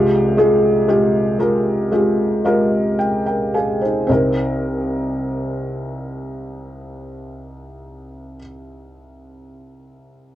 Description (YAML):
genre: pop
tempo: 54-60 BPM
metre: 4/4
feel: straight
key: C minor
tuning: A4 = 445 Hz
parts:
  - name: felt-muted upright piano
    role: accompaniment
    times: 0.0-10.3 s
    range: C2 to Ab5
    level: -17 LUFS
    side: equal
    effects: cassette tape
room: light reverb, small room ambience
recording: home recording on cassette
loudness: -16 LUFS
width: side -13 dB against mid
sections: 0.0-4.1 A section; 4.1-8.5 B section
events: slowing down 0.0-4.1; felt piano fill 1.9-4.1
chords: 0.0 Fmadd9/C; 4.1 Cm7